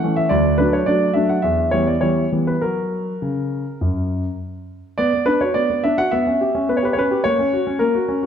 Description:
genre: classical-period piano sonatina.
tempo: 105 BPM.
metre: 4/4.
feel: rubato.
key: B minor.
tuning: A4 = 439 Hz.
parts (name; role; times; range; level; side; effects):
warm grand piano; solo; 0.0-8.3 s; D2 to F#5; -17 LUFS; equal; none.
room: wet recital hall reverb, RT60 1.5 s.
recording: dark, warm production.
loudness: -17 LUFS.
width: side -8 dB against mid.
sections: 0.0-5.0 A section; 5.0-8.3 B section.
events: none.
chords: 0.3 D; 1.4 Em; 2.6 F#; 5.0 Bm; 6.1 C#m7b5/B; 7.2 F#/A#.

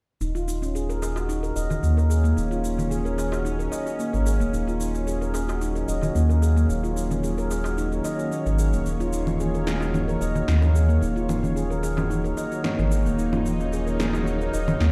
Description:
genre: organic downtempo.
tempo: 111 BPM.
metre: 4/4.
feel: straight.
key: Eb minor.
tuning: A4 = 440 Hz.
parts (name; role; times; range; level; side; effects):
bowed-like drone; sustained chords; 1.0-14.9 s; Eb3 to Db5; -34 LUFS; equal; built-in reverb, vintage 12-bit sampler grit.
handpan; arpeggios; 0.2-14.9 s; Bb3 to Eb5; -30 LUFS; equal; low-pass filter, delay.
round analog bass; bass; 0.2-14.9 s; Eb1 to Eb2; -26 LUFS; equal; none.
electronic shaker, congas and snare drum; drums; 0.2-14.9 s; none; -34 LUFS; equal; overdrive.
darbuka; percussion; 0.6-14.8 s; none; -36 LUFS; equal; none.
room: moderate scoring stage reverb, RT60 1.9 s.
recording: played on a big sound system in a bare room, large studio reverb.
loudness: -24 LUFS.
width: mono.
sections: 0.2-14.9 A section.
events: filter sweep on analog synth bass 0.2-14.9.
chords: 0.2 Ebm7.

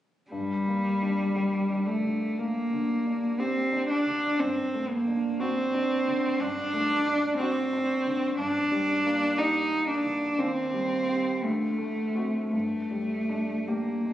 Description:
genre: classical, slow romantic movement for piano trio.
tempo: 59 BPM.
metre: 4/4.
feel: uneven beats, rubato.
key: G minor.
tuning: A4 = 440 Hz.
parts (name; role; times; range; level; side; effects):
warm cello; second line; 0.3-14.1 s; G3 to Eb4; -25 LUFS; right 1 dB; none.
clear baby grand piano; accompaniment; 0.3-14.1 s; D2 to G4; -34 LUFS; left 3 dB; none.
room: moderate scoring stage reverb, RT60 2.0 s.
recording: recorded on a phone in the room, club reverb, nothing above 10.4 kHz.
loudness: -25 LUFS.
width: side -12 dB against mid.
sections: 0.3-14.1 A section.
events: none.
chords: 0.3 Gm; 4.4 D7/G; 8.4 Gm; 10.4 Cm/Eb; 11.4 D7; 12.5 Gm.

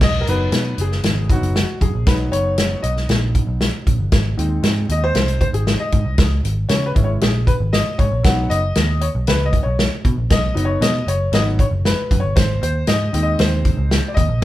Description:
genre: uptempo 1960s-style soul.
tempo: 117 BPM.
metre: 4/4.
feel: straight.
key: B major.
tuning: A4 = 440 Hz.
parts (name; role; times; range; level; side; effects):
warm grand piano; accompaniment; 0.0-14.4 s; F#3 to F#5; -23 LUFS; left 1 dB; none.
vintage muted picked electric bass; bass; 0.0-14.4 s; F#1 to C#3; -20 LUFS; equal; none.
natural country drum kit; drums; 0.0-14.4 s; crash cymbal, hi-hat, kick drum, snare drum; -18 LUFS; equal; none.
room: moderate large studio reverb, RT60 0.9 s.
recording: band playing live in one room.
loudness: -15 LUFS.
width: side -14 dB against mid.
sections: 0.0-14.4 A section.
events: grand piano solo 0.0-14.4.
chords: 0.0 B; 4.1 G#; 6.2 C#m; 8.2 B; 12.4 G#.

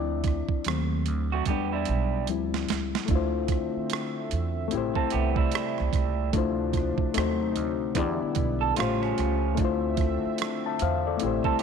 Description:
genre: R&B, neo-soul.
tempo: 74 BPM.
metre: 4/4.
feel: swing 61% on 16ths.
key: D dorian.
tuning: A4 = 443 Hz.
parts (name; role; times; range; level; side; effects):
overdriven reed electric piano; accompaniment; 0.0-11.6 s; F3 to A5; -28 LUFS; left 9 dB; none.
upright bass; bass; 0.0-11.5 s; A1 to E2; -30 LUFS; right 2 dB; none.
boom bap sampler-style drum kit; drums; 0.2-11.6 s; hi-hat, kick drum, rim click, snare drum; -30 LUFS; right 6 dB; none.
electric guitar through a small old amp; second line; 1.3-11.6 s; E#3 to A4; -30 LUFS; right 13 dB; none.
warm analog pad; sustained chords; 3.1-11.6 s; C3 to E5; -35 LUFS; right 3 dB; chorus.
room: moderate echo chamber reverb, RT60 2.3 s.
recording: 1960s-style stereo with parts hard left and right.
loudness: -24 LUFS.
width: side -6 dB against mid.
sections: 0.0-3.1 A section; 3.1-11.6 A section.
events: reed electric piano solo 0.0-3.1; drum fill 1.5-3.1.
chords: 0.0 Dm9; 0.7 D#dim7; 1.5 Em7; 2.3 Dm11; 3.1 Dm9; 4.7 Am7; 6.3 Dm9; 7.1 D#dim7; 8.0 Em7; 8.8 A7alt; 9.6 Dm9.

